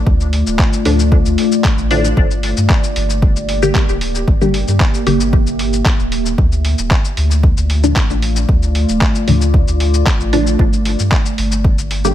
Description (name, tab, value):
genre	dub techno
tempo	114 BPM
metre	4/4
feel	straight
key	G dorian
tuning	A4 = 440 Hz
part	deep dark ambient pad	sustained chords	0.0-12.1 s	A3 to E5	-20 LUFS	left 1 dB	chorus, built-in reverb, vintage 12-bit sampler grit, sidechain pumping
part	soft dub sub bass	bass	0.0-12.1 s	D1 to G2	-16 LUFS	equal	sidechain pumping
part	electronic kick drum	drums	0.1-11.8 s	none	-14 LUFS	equal	studio ambience
part	lo-fi sampler-style drum kit	drums	0.2-12.1 s	handclaps, hi-hat, shaker	-22 LUFS	left 1 dB	studio ambience, dub echo
part	filtered dub chord stab	stabs	0.9-12.1 s	A2 to G4	-18 LUFS	left 1 dB	phaser, cassette tape, sidechain pumping, dub echo
room	digital ambience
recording	vinyl crackle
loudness	-12 LUFS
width	side -12 dB against mid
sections	0.0-12.1 A section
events	filter sweep on synth stab 0.0-12.1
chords	0.0 Dm; 2.2 Gm; 6.4 Dm; 10.6 Gm